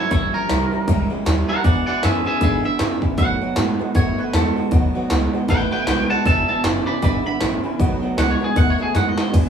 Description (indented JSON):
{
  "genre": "rockabilly",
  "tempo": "156 BPM",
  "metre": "4/4",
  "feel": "swing 58% on 8ths",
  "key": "unclear",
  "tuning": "A4 = 440 Hz",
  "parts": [
    { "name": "twangy electric guitar", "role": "melody", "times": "0.0-9.3 s", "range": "E4 to B5", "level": "-23 LUFS", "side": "right 1 dB", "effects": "none" },
    { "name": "honky-tonk upright piano", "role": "accompaniment", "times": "0.0-9.5 s", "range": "B4 to A#5", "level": "-32 LUFS", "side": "equal", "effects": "none" },
    { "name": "picked steel-string acoustic guitar", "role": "accompaniment", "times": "0.0-9.5 s", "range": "E2 to F#4", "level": "-29 LUFS", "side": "left 5 dB", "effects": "none" },
    { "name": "electric guitar through a small old amp", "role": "riff", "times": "0.0-9.5 s", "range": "E2 to A3", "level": "-24 LUFS", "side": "right 4 dB", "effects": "none" },
    { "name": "upright bass", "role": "bass", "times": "0.1-9.5 s", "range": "E1 to B2", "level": "-23 LUFS", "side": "equal", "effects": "none" },
    { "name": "industrial drum kit", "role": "drums", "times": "0.1-9.4 s", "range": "hi-hat, kick drum, ride cymbal, snare drum", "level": "-21 LUFS", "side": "equal", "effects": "none" }
  ],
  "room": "moderate studio reverb, RT60 0.6 s",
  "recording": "band playing live in one room, studio ambience",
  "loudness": "-17 LUFS",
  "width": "side -8 dB against mid",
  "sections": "0.0-9.3 A section",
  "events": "clean electric guitar solo 0.0-9.3; drum fill 9.0-9.3",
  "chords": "0.1 A#dim7; 1.6 E7; 3.2 B7; 6.3 E7; 7.8 B7",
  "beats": "| 0.12 0.50 0.88 1.27 | 1.65 2.03 2.42 2.80 | 3.19 3.57 3.95 4.34 | 4.72 5.11 5.49 5.87 | 6.26 6.64 7.03 7.41 | 7.80 8.18 8.57 8.95 | 9.34"
}